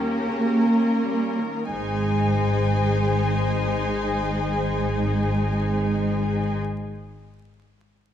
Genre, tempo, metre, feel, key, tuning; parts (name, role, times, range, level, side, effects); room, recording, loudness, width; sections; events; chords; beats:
classical, slow romantic movement for string orchestra; 32 BPM (dotted quarters); 12/8; rubato; Ab major; A4 = 435 Hz
rich studio violin section; melody; 0.0-6.6 s; G4 to C5; -33 LUFS; left 8 dB
clear studio violin section; second line; 0.0-6.6 s; Bb4 to Ab5; -31 LUFS; left 3 dB
bright studio viola section; accompaniment; 0.0-6.6 s; Db3 to Ab4; -28 LUFS; left 1 dB
rich studio cello section; bass; 0.0-6.6 s; Ab3 to Bb3; -26 LUFS; right 2 dB
rich studio double bass section; bass; 1.7-6.6 s; Ab1; -25 LUFS; equal
wet scoring stage reverb, RT60 1.6 s; dark, warm production, vinyl crackle; -21 LUFS; side -10 dB against mid
0.0-1.7 A section; 1.7-8.1 B section
slowing down 0.0-1.7
0.0 Eb7; 1.7 Ab
| 1.71 3.56 5.45